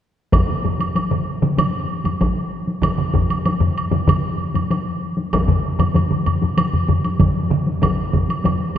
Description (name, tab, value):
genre	japanese traditional, taiko drum ensemble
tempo	96 BPM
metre	4/4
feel	straight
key	none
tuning	none
part	solo taiko drums	percussion	0.3-8.6 s	none	-22 LUFS	left 2 dB	none
part	taiko ensemble	percussion	0.3-8.8 s	none	-22 LUFS	left 2 dB	none
part	taiko ensemble	percussion	0.3-8.8 s	none	-22 LUFS	right 2 dB	none
part	taiko ensemble	percussion	0.3-8.3 s	none	-24 LUFS	equal	none
part	woodblock	percussion	0.3-8.8 s	none	-26 LUFS	right 4 dB	none
room	wet concert hall reverb, RT60 2.5 s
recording	none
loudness	-17 LUFS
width	side -10 dB against mid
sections	0.3-8.8 A section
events	none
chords	none